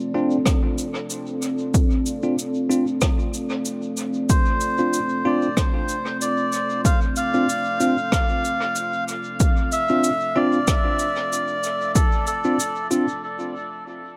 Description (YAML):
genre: ambient dub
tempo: 94 BPM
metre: 4/4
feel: swing 56% on 16ths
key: D minor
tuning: A4 = 439 Hz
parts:
  - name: deep dark ambient pad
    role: sustained chords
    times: 0.0-13.2 s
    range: C4 to D5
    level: -30 LUFS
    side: equal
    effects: chorus, built-in reverb
  - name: bell-like tine electric piano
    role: stabs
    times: 0.1-13.1 s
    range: C4 to F4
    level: -27 LUFS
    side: equal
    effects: low-pass filter, dub echo
  - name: electronic kick drum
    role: drums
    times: 0.5-12.1 s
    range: none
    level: -22 LUFS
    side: equal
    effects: overdrive
  - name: rim click and cabasa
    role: drums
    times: 0.5-13.1 s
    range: none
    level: -32 LUFS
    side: equal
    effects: dub echo
  - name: melodica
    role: melody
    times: 4.3-12.9 s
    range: A4 to F5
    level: -26 LUFS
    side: equal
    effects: dub echo
room: moderate spring reverb, RT60 2.8 s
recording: echo-heavy mix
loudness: -22 LUFS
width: mono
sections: 0.0-14.2 A section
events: break 13.2-14.2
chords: 0.0 Dm7